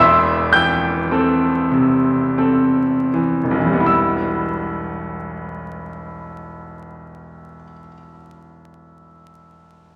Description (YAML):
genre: classical, romantic nocturne for solo piano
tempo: 38-56 BPM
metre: 3/4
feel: rubato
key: E minor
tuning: A4 = 440 Hz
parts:
  - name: clear grand piano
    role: solo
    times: 0.0-10.0 s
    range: E1 to G6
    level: -18 LUFS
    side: equal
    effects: none
room: wet recital hall reverb, RT60 1.8 s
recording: vinyl crackle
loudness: -18 LUFS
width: mono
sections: 0.0-3.9 A section; 3.9-8.0 B section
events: slowing down 0.0-3.9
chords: 0.0 Am/E; 3.9 Em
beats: | 0.00 1.11 2.38 | 3.88 5.25 6.62